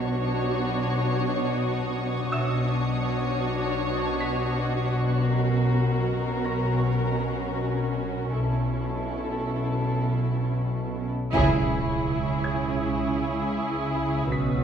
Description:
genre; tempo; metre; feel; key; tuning
cinematic, suspense film score; 80 BPM; 4/4; straight; B minor, C# minor from 11.3 s; A4 = 440 Hz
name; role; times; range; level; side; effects
muted studio violin section; melody; 0.0-14.6 s; G#4 to C#5; -33 LUFS; left 2 dB; none
muted chamber violin section; second line; 0.0-14.6 s; E4 to F#4; -33 LUFS; right 1 dB; none
muted symphonic viola section; accompaniment; 0.0-14.6 s; C#4 to E4; -33 LUFS; equal; none
muted studio cello section; bass; 0.0-14.6 s; B2 to C#3; -31 LUFS; right 2 dB; none
muted symphonic double bass section; bass; 0.0-3.0, 8.3-14.6 s; B1 to C#2; -30 LUFS; right 1 dB; none
organ-like drone; drone; 0.0-14.6 s; B1 to C#2; -28 LUFS; equal; ensemble chorus, built-in reverb
muted symphonic violin section; texture; 0.0-4.9, 11.3-14.6 s; C#6 to E6; -37 LUFS; right 3 dB; none
bright grand piano; texture; 2.3-14.6 s; E5 to B6; -37 LUFS; right 1 dB; none
impact; sound effects; 11.3-14.3 s; none; -33 LUFS; equal; none
room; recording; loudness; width
wet scoring stage reverb, RT60 1.6 s; minimal, uncompressed stereo recording; -23 LUFS; side -8 dB against mid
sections
0.0-11.3 A section; 11.3-14.6 B section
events
band accent 11.3-12.1; impact 11.3-14.3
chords
0.0 Bmadd9; 5.3 F#/B; 11.3 C#madd9

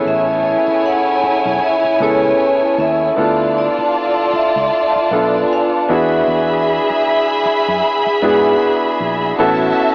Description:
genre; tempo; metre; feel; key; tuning
soul; 77 BPM; 4/4; swing 58% on 16ths; A major; A4 = 438 Hz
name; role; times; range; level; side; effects
vibraphone with hard mallets; melody; 0.0-9.0 s; C#5 to G#5; -20 LUFS; equal; cassette tape
warm studio violin section; second line; 0.0-9.9 s; E4 to B5; -19 LUFS; equal; cassette tape
clear concert grand piano; accompaniment; 0.0-9.9 s; B3 to A4; -20 LUFS; equal; cassette tape
vintage muted fingered electric bass; bass; 0.1-9.7 s; A1 to G#2; -30 LUFS; equal; none
room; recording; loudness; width
moderate spring reverb, RT60 1.9 s, studio ambience; home recording on cassette, AM radio sound; -15 LUFS; mono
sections
0.0-9.4 A section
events
none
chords
0.0 Amaj7; 3.2 Dm6; 5.9 E7; 9.4 A6

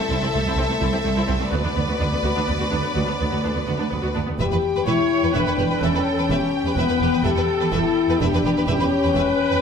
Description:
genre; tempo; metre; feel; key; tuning
cinematic; 126 BPM; 3/4; straight; E dorian from 4.4 s; A4 = 443 Hz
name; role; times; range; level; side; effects
clear symphonic violin section; second line; 0.0-9.6 s; G4 to E5; -27 LUFS; left 1 dB; none
rich symphonic viola section; accompaniment; 0.0-9.6 s; A3 to C#5; -27 LUFS; right 1 dB; none
mellow French horn section; sustained chords; 0.0-9.6 s; E3 to B4; -23 LUFS; left 6 dB; none
rich symphonic cello section; bass; 0.0-9.6 s; C2 to E2; -26 LUFS; right 2 dB; none
clear symphonic double bass section; bass; 0.1-9.2 s; E1 to D2; -26 LUFS; right 3 dB; none
warm symphonic violin section; melody; 4.4-9.6 s; G5; -32 LUFS; left 2 dB; none
room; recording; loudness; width
wet scoring stage reverb, RT60 1.8 s; none; -18 LUFS; side -6 dB against mid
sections
0.0-4.4 A section; 4.4-9.6 B section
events
build-up 0.0-4.4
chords
0.0 Am/C; 1.5 Bm/D; 4.4 Em

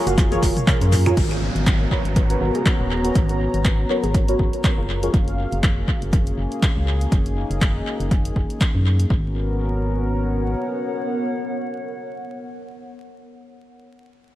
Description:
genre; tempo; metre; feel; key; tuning
deep house; 121 BPM; 4/4; swing 56% on 16ths; G# dorian; A4 = 439 Hz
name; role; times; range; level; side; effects
dark analog pad; sustained chords; 0.0-13.4 s; A#3 to A#5; -28 LUFS; left 1 dB; chorus, vintage 12-bit sampler grit, sidechain pumping
deep mellow chord stab; stabs; 0.0-5.1 s; E#4 to C#5; -26 LUFS; right 1 dB; chorus, phaser, vintage 12-bit sampler grit, sidechain pumping, tape echo
warbly tape-like pad; texture; 0.0-13.6 s; F#3 to A#5; -31 LUFS; equal; chorus, built-in reverb, sidechain pumping
warbly dusty pluck; arpeggios; 0.1-4.8 s; E#4 to C#5; -31 LUFS; right 1 dB; chorus, sidechain pumping, analog delay
organ-like FM bass; bass; 0.1-10.6 s; D#1 to F#2; -22 LUFS; equal; sidechain pumping
punchy analog drum machine; drums; 0.1-9.1 s; crash cymbal, finger snaps, handclaps, hi-hat, shaker, toms; -28 LUFS; equal; overdrive, tape echo
electronic kick drum; drums; 0.2-9.2 s; none; -19 LUFS; equal; overdrive
downlifter; sound effects; 1.2-5.1 s; none; -32 LUFS; right 1 dB; none
room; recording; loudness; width
light reverb, digital ambience; echo-heavy mix, vinyl crackle, lossy compression artefacts; -18 LUFS; side -15 dB against mid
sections
0.0-1.2 A section; 1.2-9.1 B section; 9.1-13.1 C section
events
drop 0.0-1.2; drum fill 0.2-1.2; fade-out on ambient pad 1.2-9.1; filter sweep on FM bass 1.2-9.1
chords
0.0 F#maj9; 1.2 G#m11; 4.9 F#maj9; 9.1 G#m11

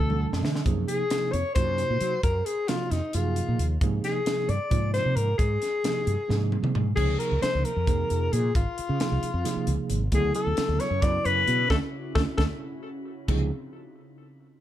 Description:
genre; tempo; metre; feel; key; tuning
electric jazz fusion; 266 BPM (eighths); 7/8; straight; Db major; A4 = 440 Hz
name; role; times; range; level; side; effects
warm alto saxophone; melody; 0.0-12.4 s; Eb4 to D5; -28 LUFS; left 3 dB; plate reverb
tine electric piano; accompaniment; 0.0-13.5 s; Cb3 to A5; -32 LUFS; right 6 dB; medium tremolo, wide subtle chorus
fretless electric bass; bass; 0.0-13.5 s; Ab1 to Gb3; -26 LUFS; equal; wide subtle chorus
crisp fusion drum kit; drums; 0.1-13.4 s; crash cymbal, hi-hat, kick drum, snare drum, toms; -29 LUFS; equal; none
lush unison pad; sustained chords; 10.1-13.5 s; C#3 to F#4; -39 LUFS; equal; chorus, plate reverb
room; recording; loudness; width
light reverb; dark, warm production; -23 LUFS; side -12 dB against mid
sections
0.0-7.0 A section; 7.0-13.3 B section; 13.3-14.6 C section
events
drum fill 0.0-0.7, 6.3-7.0, 12.9-13.3; tine electric piano fill 0.0-0.7, 12.6-13.3; band accent 11.7-13.3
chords
0.0 Dadd9; 0.7 Gbmaj9; 3.8 Abmaj9; 7.0 Dbmaj9; 10.1 Dmaj9; 13.3 Dbmaj9

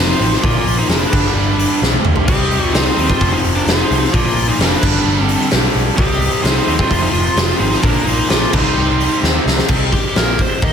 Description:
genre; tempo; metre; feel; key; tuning
hard rock; 130 BPM; 4/4; straight; C minor; A4 = 440 Hz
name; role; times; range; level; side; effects
biting lead guitar; melody; 0.0-10.7 s; D4 to Eb5; -20 LUFS; equal; overdrive, slapback echo
octave-fuzz lead guitar; second line; 0.0-9.2 s; Bb4 to Eb5; -24 LUFS; right 3 dB; distortion
cranked stack guitar; riff; 0.0-10.7 s; F2 to Eb4; -23 LUFS; left 10 dB; overdrive, slapback echo
cranked stack guitar; riff; 0.0-10.7 s; F2 to Eb4; -25 LUFS; equal; overdrive, tremolo, slapback echo
scooped high-gain guitar; riff; 0.0-10.7 s; F2 to Eb4; -24 LUFS; right 9 dB; distortion, slapback echo
picked electric bass; bass; 0.0-10.7 s; F1 to Eb2; -19 LUFS; equal; none
huge arena drum kit; drums; 0.1-10.7 s; crash cymbal, hi-hat, kick drum, snare drum, toms; -16 LUFS; equal; none
tonewheel organ; sustained chords; 2.3-10.7 s; none; barely audible; none; none
room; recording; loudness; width
moderate lush hall reverb, RT60 1.6 s, studio ambience; big arena sound; -12 LUFS; side -7 dB against mid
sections
0.0-9.7 A section; 9.7-10.7 B section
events
drum fill 1.8-2.3, 9.2-9.7; lead electric guitar solo 9.7-10.7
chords
0.4 Bb5; 1.1 G; 2.3 Cm; 3.2 Fm; 4.1 Bb; 4.8 G; 6.0 Cm; 6.9 Fm; 7.8 Bb; 8.5 Cm

